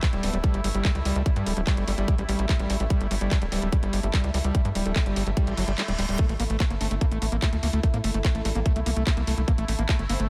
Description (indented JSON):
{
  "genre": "psychedelic trance",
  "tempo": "146 BPM",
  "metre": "4/4",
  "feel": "straight",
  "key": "unclear",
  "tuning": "A4 = 440 Hz",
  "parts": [
    { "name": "bubbling stepped-filter texture", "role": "sustained chords", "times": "0.0-10.3 s", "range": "A3 to E4", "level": "-38 LUFS", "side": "equal", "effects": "chorus, built-in reverb, vintage 12-bit sampler grit, sidechain pumping" },
    { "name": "screaming distorted acid line", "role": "riff", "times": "0.0-10.3 s", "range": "F#3 to Bb3", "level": "-32 LUFS", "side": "equal", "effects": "distortion, chorus, sidechain pumping, tape echo" },
    { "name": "electronic kick drum", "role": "drums", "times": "0.0-10.0 s", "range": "none", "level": "-26 LUFS", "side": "equal", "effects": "none" },
    { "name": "garage drum kit", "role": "drums", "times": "0.0-10.3 s", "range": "handclaps, hi-hat", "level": "-35 LUFS", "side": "equal", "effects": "none" },
    { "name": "tight sequencer bass", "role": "bass", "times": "0.1-10.3 s", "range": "D1 to A2", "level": "-29 LUFS", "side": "equal", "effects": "none" },
    { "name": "formant-sweep wobble bass", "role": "second line", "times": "0.2-10.2 s", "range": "G3 to C4", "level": "-45 LUFS", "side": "equal", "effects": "none" },
    { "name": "reverse cymbal", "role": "sound effects", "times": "5.5-6.2 s", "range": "none", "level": "-39 LUFS", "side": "equal", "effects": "none" }
  ],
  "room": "little or no reverb",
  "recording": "none",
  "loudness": "-25 LUFS",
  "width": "mono",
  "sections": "0.0-10.3 A section",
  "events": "reverse cymbal 5.5-6.2; kick drops out 5.8-6.2",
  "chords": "0.0 G5; 6.2 A5",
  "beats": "0.03 0.44 0.85 | 1.26 1.67 2.08 2.49 | 2.90 3.31 3.73 4.14 | 4.55 4.96 5.37 5.78 | 6.19 6.60 7.01 7.42 | 7.83 8.25 8.66 9.07 | 9.48 9.89"
}